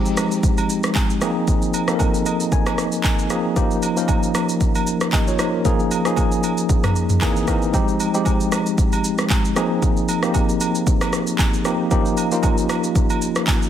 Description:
amapiano; 115 BPM; 4/4; swing 55% on 16ths; A4 = 440 Hz
tine electric piano; accompaniment; 0.0-13.7 s; E3 to Ab5; -20 LUFS; left 1 dB; overdrive, medium stereo tremolo
deep house drum kit; drums; 0.1-13.7 s; handclaps, kick drum, rim click, shaker, toms; -20 LUFS; equal; soft clipping on snare
agogo bells and woodblock; percussion; 0.2-13.6 s; -29 LUFS; right 6 dB
light reverb; dense, heavily limited modern master; -17 LUFS; side -10 dB against mid
0.0-13.7 A section
tine electric piano fill 2.0-3.6
0.0 Fm7; 1.2 Bb9sus4; 3.6 Eb7; 5.7 Db69; 7.2 C7alt; 7.7 Fm7; 9.6 Bb9sus4; 11.9 Eb7
0.43 0.95 | 1.48 2.00 2.52 3.04 | 3.56 4.09 4.61 5.13 | 5.65 6.17 6.69 7.22 | 7.74 8.26 8.78 9.30 | 9.82 10.35 10.87 11.39 | 11.91 12.43 12.96 13.48

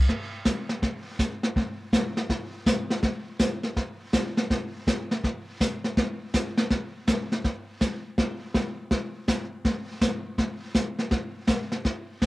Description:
jazz; 163 BPM; 4/4; swing 64% on 8ths
jazz brush drum kit; drums; 0.1-12.3 s; brushed snare drum, hi-hat, kick drum, snare drum; -24 LUFS; equal
moderate spring reverb, RT60 1.4 s; home recording on cassette; -25 LUFS; side -19 dB against mid
0.1-11.8 A section
| 0.08 0.45 0.82 1.19 | 1.55 1.92 2.29 2.66 | 3.02 3.39 3.76 4.13 | 4.50 4.86 5.23 5.60 | 5.97 6.33 6.70 7.07 | 7.44 7.80 8.17 8.54 | 8.91 9.28 9.64 10.01 | 10.38 10.74 11.11 11.48 | 11.85 12.22

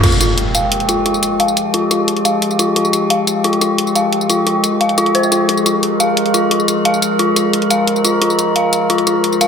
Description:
dark technical drum and bass; 176 BPM; 4/4; straight; F minor; A4 = 440 Hz
metallic inharmonic drone; sustained chords; 0.0-9.5 s; F3 to Bb4; -16 LUFS; left 1 dB; chorus, built-in reverb
dark detuned synth bell; arpeggios; 0.0-9.5 s; F4 to F5; -16 LUFS; left 1 dB; chorus, low-pass filter, tape echo
drum and bass drum kit; drums; 0.0-9.5 s; crash cymbal, hi-hat, tambourine; -18 LUFS; equal
impact; sound effects; 0.0-1.4 s; -18 LUFS; equal
wet lush hall reverb, RT60 2.1 s; -12 LUFS; side -7 dB against mid
0.0-9.5 A section
impact 0.0-1.4; filter sweep on synth bell 0.0-9.5
0.0 Fmadd9
| 0.04 0.38 0.72 1.06 | 1.40 1.74 2.08 2.42 | 2.76 3.10 3.44 3.79 | 4.12 4.47 4.81 5.15 | 5.49 5.83 6.17 6.51 | 6.85 7.19 7.54 7.88 | 8.22 8.56 8.90 9.24

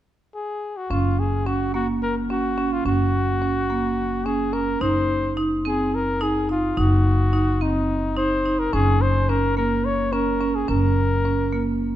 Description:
contemporary instrumental, chamber music in an uneven meter; 215 BPM (eighths); 7/8; straight; Gb lydian; A4 = 444 Hz
clear flugelhorn; melody; 0.3-11.8 s; Eb4 to Db5; -25 LUFS; left 3 dB
marimba with medium hard mallets; arpeggios; 0.9-11.9 s; Bb3 to Eb4; -23 LUFS; right 3 dB
upright bass; bass; 0.9-12.0 s; Gb1; -24 LUFS; left 1 dB
moderate concert hall reverb, RT60 2.2 s; dark, warm production; -19 LUFS; side -12 dB against mid
0.9-12.0 A section
0.0 N.C.; 0.9 Gb; 4.8 Ab7/Gb (rootless); 8.7 Gb
0.06 0.34 0.62 | 0.90 1.18 1.46 1.74 2.02 2.30 2.58 | 2.86 3.14 3.42 3.70 3.98 4.26 4.54 | 4.82 5.10 5.38 5.66 5.94 6.21 6.50 | 6.78 7.05 7.33 7.61 7.89 8.17 8.45 | 8.73 9.01 9.29 9.57 9.85 10.13 10.41 | 10.69 10.97 11.25 11.53 11.81

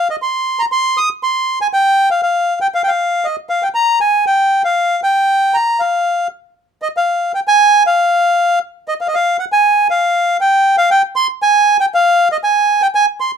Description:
tango; 118 BPM; 4/4; rubato; A4 = 439 Hz
bandoneon; solo; 0.0-13.3 s; Eb5 to Eb6; -12 LUFS; equal
light reverb; minimal, uncompressed stereo recording; -12 LUFS; side -7 dB against mid
0.0-13.4 A section
0.24 | 0.74 1.25 1.75 2.25 | 2.76 3.26 3.77 4.28 | 4.78 5.29 5.80 6.32 | 6.83 7.34 7.86 8.37 | 8.88 9.39 9.90 10.41 | 10.91 11.42 11.92 12.42 | 12.93

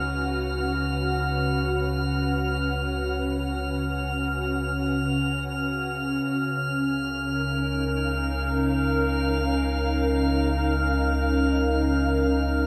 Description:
ambient; free time; Db mixolydian; A4 = 438 Hz
glassy FM pad; sustained chords; 0.0-12.7 s; Db3 to Gb5; -27 LUFS; equal; ensemble chorus, built-in reverb
warm sub bass; bass; 0.0-12.7 s; Db2; -31 LUFS; equal
drifting glass-harmonics texture; texture; 0.0-12.7 s; F6; -33 LUFS; equal; chorus, built-in reverb
wet lush hall reverb, RT60 2.7 s; cassette tape; -25 LUFS; mono
0.0-12.7 A section
fade-in on ambient pad 0.0-12.7; fade-in on sub bass 0.0-12.7
0.0 Cbsus2/Db; 6.3 Db6
free time

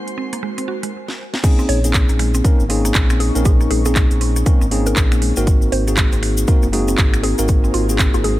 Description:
deep house; 119 BPM; 4/4; swing 60% on 16ths; Bb minor; A4 = 441 Hz
tine electric piano; stabs; 0.0-8.4 s; Ab3 to Bb4; -21 LUFS; left 1 dB; sidechain pumping, low-pass filter, ping-pong delay
ethereal airy pad; texture; 0.0-8.4 s; Eb4 to Db6; -32 LUFS; left 2 dB; ensemble chorus, built-in reverb, sidechain pumping
rich chamber violin section; texture; 0.0-0.9 s; C6 to C7; -36 LUFS; left 2 dB
house drum kit; drums; 0.1-8.4 s; crash cymbal, finger snaps, handclaps, hi-hat, snare drum; -23 LUFS; right 1 dB
mallet-like synth pluck; arpeggios; 0.2-8.3 s; Ab3 to Gb4; -30 LUFS; right 4 dB; chorus, sidechain pumping, dub echo
electronic kick drum; drums; 1.4-8.1 s; -15 LUFS; equal
cabasa; percussion; 1.4-8.2 s; -29 LUFS; left 4 dB
mallet-like synth pluck; melody; 1.7-8.4 s; F4 to Db5; -27 LUFS; equal; chorus, phaser, tape echo
sub bass with octave; bass; 1.7-8.4 s; Gb1 to Bb1; -19 LUFS; equal; sidechain pumping
little or no reverb; -14 LUFS; side -16 dB against mid
0.0-1.4 A section; 1.4-8.4 B section
stop 0.9-1.4; drum fill 1.1-1.4; drop 1.4-8.4
0.0 Ab9; 1.4 Bbm11; 5.5 Ab9
0.43 0.93 | 1.44 1.94 2.44 2.95 | 3.45 3.96 4.46 4.97 | 5.47 5.97 6.48 6.98 | 7.49 7.99

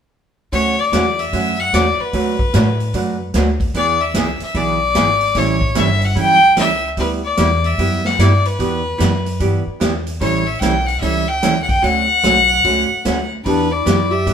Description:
country, western swing; 148 BPM; 4/4; swing 64% on 8ths; D major; A4 = 437 Hz
clear fiddle; melody; 0.5-14.3 s; B4 to G5; -17 LUFS; left 2 dB
archtop guitar, miked and amplified; accompaniment; 0.5-14.3 s; D3 to B4; -20 LUFS; right 4 dB
upright bass; bass; 0.5-14.3 s; G1 to A2; -20 LUFS; equal
swinging big-band drum kit; drums; 0.5-14.3 s; hi-hat, kick drum, snare drum; -23 LUFS; equal
breathy clarinet; second line; 13.4-14.3 s; D4 to G4; -20 LUFS; left 2 dB
moderate stone room reverb, RT60 1.1 s; band playing live in one room; -14 LUFS; side -8 dB against mid
0.5-14.3 A section
0.5 Dmaj7; 2.1 Bm7/D; 3.7 E7; 5.4 A7; 7.0 G6; 8.6 Em7; 10.2 A7; 11.8 Dmaj7; 13.5 Em7
| 0.52 0.92 1.33 1.73 | 2.13 2.54 2.94 3.34 | 3.75 4.15 4.55 4.96 | 5.36 5.76 6.17 6.57 | 6.97 7.38 7.78 8.19 | 8.59 8.99 9.40 9.80 | 10.21 10.61 11.02 11.42 | 11.83 12.23 12.64 13.05 | 13.45 13.86 14.26

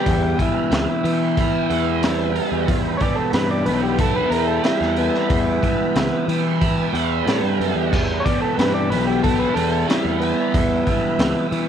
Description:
psychedelic rock; 92 BPM; 4/4; straight; E minor; A4 = 440 Hz
combo organ; melody; 0.0-11.5 s; B3 to D5; -23 LUFS; equal; tape echo
ensemble organ-string; sustained chords; 0.0-11.7 s; B4 to B5; -31 LUFS; right 10 dB; ensemble chorus
crunchy overdriven guitar; riff; 0.0-11.7 s; E2 to E4; -22 LUFS; equal; flanger
fuzz picked electric bass; bass; 0.1-11.7 s; B1 to E3; -24 LUFS; equal; overdrive
crunchy breakbeat drum kit; drums; 0.1-11.7 s; crash cymbal, hi-hat, kick drum, snare drum; -23 LUFS; equal
small room ambience; 1960s-style stereo; -17 LUFS; side -8 dB against mid
0.0-11.7 A section
transistor combo organ solo 0.0-11.7
0.0 Em
| 0.06 0.72 1.37 2.03 | 2.69 3.34 4.00 4.65 | 5.31 5.96 6.62 7.27 | 7.92 8.58 9.23 9.89 | 10.54 11.19

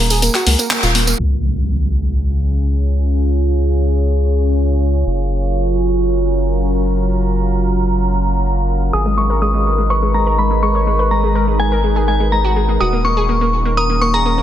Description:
progressive house; 124 BPM; 4/4; straight; A4 = 440 Hz
glassy synth bell; melody; 0.0-0.7, 8.9-14.4 s; Ab5 to Eb6; -19 LUFS; left 1 dB; chorus, tape echo
analog pluck; arpeggios; 0.0-1.1, 8.9-14.4 s; Ab3 to Db5; -21 LUFS; equal; chorus, digital delay
round analog bass; bass; 0.0-14.4 s; Eb1 to Db2; -16 LUFS; equal
deep house drum kit; drums; 0.1-1.2 s; handclaps, hi-hat; -16 LUFS; left 1 dB; overdrive
tambourine; percussion; 0.1-1.2 s; -21 LUFS; right 4 dB
evolving wavetable pad; sustained chords; 1.9-14.4 s; Db3 to Cb5; -20 LUFS; right 1 dB; phaser, built-in reverb
impact; sound effects; 1.2-3.1 s; -21 LUFS; equal
light reverb; dense, heavily limited modern master, low-pass filter; -14 LUFS; side -11 dB against mid
0.0-1.2 A section; 1.2-14.4 B section
band accent 0.7; impact 1.2-3.1; filter sweep 1.2-14.4
0.0 Eb5; 1.2 Db; 5.1 Gbmaj7; 8.9 Abmadd9; 12.8 Ebm7
0.22 0.71 | 1.19 1.68 2.16 2.64 | 3.13 3.61 4.09 4.58 | 5.06 5.55 6.03 6.51 | 7.00 7.48 7.97 8.45 | 8.93 9.42 9.90 10.38 | 10.87 11.35 11.84 12.32 | 12.80 13.29 13.77 14.26

